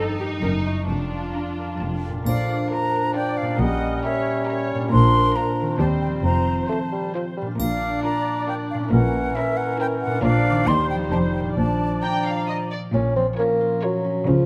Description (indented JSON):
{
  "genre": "cinematic, playful, whimsical film cue",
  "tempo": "135 BPM",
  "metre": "3/4",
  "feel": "straight",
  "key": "Bb major",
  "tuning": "A4 = 439 Hz",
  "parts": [
    { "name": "muted studio violin section", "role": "melody", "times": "0.0-14.2 s", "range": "Bb4 to Bb5", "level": "-36 LUFS", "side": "equal", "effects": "none" },
    { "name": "muted studio violin section", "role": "second line", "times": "0.0-14.2 s", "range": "C4 to Bb4", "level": "-36 LUFS", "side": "equal", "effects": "none" },
    { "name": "muted studio viola section", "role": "accompaniment", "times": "0.0-14.2 s", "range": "Eb4 to Eb5", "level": "-34 LUFS", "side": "equal", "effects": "none" },
    { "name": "concert harp", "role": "arpeggios", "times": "0.0-14.5 s", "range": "F2 to D5", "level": "-30 LUFS", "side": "equal", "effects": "none" },
    { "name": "muted studio cello section", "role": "bass", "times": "0.4-14.5 s", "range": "Eb2 to Db3", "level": "-28 LUFS", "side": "equal", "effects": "none" },
    { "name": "muted studio double bass section", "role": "bass", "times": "0.4-14.5 s", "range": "F1 to Eb2", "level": "-27 LUFS", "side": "equal", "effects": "none" },
    { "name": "mellow clarinet", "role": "second line", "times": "2.3-12.7 s", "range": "C4 to Eb4", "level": "-32 LUFS", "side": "equal", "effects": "none" },
    { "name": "mellow silver concert flute", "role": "second line", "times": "2.3-12.7 s", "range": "Fb5 to C6", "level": "-28 LUFS", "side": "equal", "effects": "none" },
    { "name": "mellow bassoon", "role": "accompaniment", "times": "2.3-14.5 s", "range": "Fb3 to Db4", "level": "-29 LUFS", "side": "equal", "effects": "none" },
    { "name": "triangle", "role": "percussion", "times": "2.3-3.1, 7.6-8.4 s", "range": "none", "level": "-43 LUFS", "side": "equal", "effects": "none" },
    { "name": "vibraphone with soft mallets", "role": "melody", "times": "12.9-14.5 s", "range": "F4 to Db5", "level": "-31 LUFS", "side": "equal", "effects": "none" }
  ],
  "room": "light reverb",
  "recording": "close, detailed microphones",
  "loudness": "-22 LUFS",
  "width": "mono",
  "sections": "0.0-2.3 A section; 2.3-12.9 B section; 12.9-14.5 C section",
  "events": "none",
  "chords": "0.4 Gb7; 0.9 Bb/F; 1.8 F; 2.3 Bb; 3.6 Bbdim7; 4.9 Bb; 5.8 Cm/Eb; 6.2 F; 7.6 Bb; 10.7 Cm/Eb; 11.1 F7sus2; 11.6 Bb; 12.9 Bbm"
}